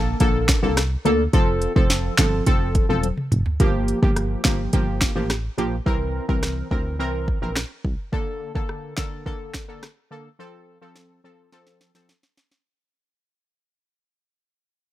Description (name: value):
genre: dancehall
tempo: 106 BPM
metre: 4/4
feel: straight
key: unclear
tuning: A4 = 441 Hz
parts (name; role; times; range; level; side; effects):
- synth brass stab; accompaniment; 0.0-12.1 s; D3 to Bb4; -24 LUFS; equal; chorus, sidechain pumping
- solid FM bass; bass; 0.0-8.0 s; E1 to D2; -25 LUFS; equal; none
- afro-pop drum kit; drums; 0.2-12.6 s; finger snaps, hi-hat, kick drum, rim click, snare drum, toms; -21 LUFS; equal; none
room: little or no reverb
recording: dry, gritty hardware recording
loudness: -19 LUFS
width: side -14 dB against mid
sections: 0.0-3.6 A section; 3.6-12.7 B section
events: drum fill 3.0-3.6, 11.5-12.7; fade-out 3.6-12.7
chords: 0.0 Bbmaj7; 1.3 F; 3.6 Gm7; 5.9 C7; 8.1 Bbmaj7; 10.4 F